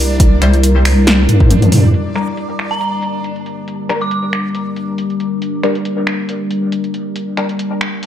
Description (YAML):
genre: deep dubstep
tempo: 138 BPM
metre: 4/4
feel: swing 54% on 16ths, half-time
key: G dorian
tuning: A4 = 444 Hz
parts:
  - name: deep dark ambient pad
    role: sustained chords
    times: 0.0-8.1 s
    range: G3 to Bb4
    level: -19 LUFS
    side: left 1 dB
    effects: chorus, built-in reverb
  - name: deep soft wobble bass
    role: bass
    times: 0.0-1.9 s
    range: C2 to G2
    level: -11 LUFS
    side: equal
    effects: chorus
  - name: backwards swelling texture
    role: texture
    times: 0.0-1.9 s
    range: D4 to D5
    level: -27 LUFS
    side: right 2 dB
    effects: built-in reverb
  - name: deep house drum kit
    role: drums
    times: 0.2-8.1 s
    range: finger snaps, hi-hat, snare drum, toms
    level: -17 LUFS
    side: equal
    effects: overdrive, low-pass filter on hats, low-pass filter on snare, low-pass filter on toms, low-pass filter on room
  - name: electronic kick drum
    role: drums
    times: 0.2-1.5 s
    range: none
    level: -10 LUFS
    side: equal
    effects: overdrive
  - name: filtered dub chord stab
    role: stabs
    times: 0.4-7.5 s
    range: G3 to C5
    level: -22 LUFS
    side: left 3 dB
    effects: phaser, ensemble chorus, dub echo
  - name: dark detuned synth bell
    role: melody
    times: 2.7-4.6 s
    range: Bb5 to D6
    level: -23 LUFS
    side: right 3 dB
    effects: chorus, phaser, dub echo
room: light reverb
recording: none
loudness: -13 LUFS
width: side -10 dB against mid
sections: 0.0-1.9 A section; 1.9-8.1 B section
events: drop 0.0-1.9; kick drops out 1.5-1.9; drum fill 1.5-1.9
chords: 0.0 C; 1.9 Gm